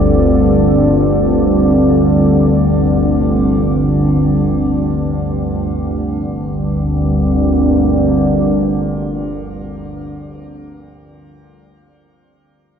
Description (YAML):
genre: dark ambient drone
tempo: free time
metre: none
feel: none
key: unclear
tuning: A4 = 441 Hz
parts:
  - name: deep dark ambient pad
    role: sustained chords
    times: 0.0-10.3 s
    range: G3 to D5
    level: -16 LUFS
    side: equal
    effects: chorus, built-in reverb, shimmer reverb
  - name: organ-like drone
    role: drone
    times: 0.0-9.8 s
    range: G1 to D2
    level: -15 LUFS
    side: equal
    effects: ensemble chorus, built-in reverb
room: wet spring reverb, RT60 2.4 s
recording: none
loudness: -12 LUFS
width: side -7 dB against mid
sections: 0.0-5.9 A section; 5.9-9.7 B section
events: none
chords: 0.0 Gsus2; 5.9 Gm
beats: free time